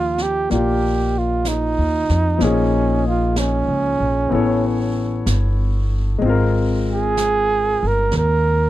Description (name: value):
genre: jazz ballad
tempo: 63 BPM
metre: 4/4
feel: swing 68% on 8ths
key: Eb major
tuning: A4 = 440 Hz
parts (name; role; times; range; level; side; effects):
- breathy flugelhorn; melody; 0.0-8.7 s; Db4 to Bb4; -20 LUFS; right 4 dB; none
- clear concert grand piano; accompaniment; 0.0-8.7 s; F3 to D5; -22 LUFS; left 4 dB; none
- upright bass; bass; 0.0-8.7 s; G1 to F2; -20 LUFS; equal; none
- jazz brush drum kit; drums; 0.2-8.7 s; brushed snare drum, hi-hat, snare drum; -33 LUFS; right 2 dB; none
room: little or no reverb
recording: none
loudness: -16 LUFS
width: side -14 dB against mid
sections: 0.0-8.7 A section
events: none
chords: 0.0 Ebmaj9; 2.4 Bbm7; 4.3 A7; 6.2 Abadd9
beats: 0.50 1.45 | 2.40 3.36 4.31 5.26 | 6.22 7.17 8.13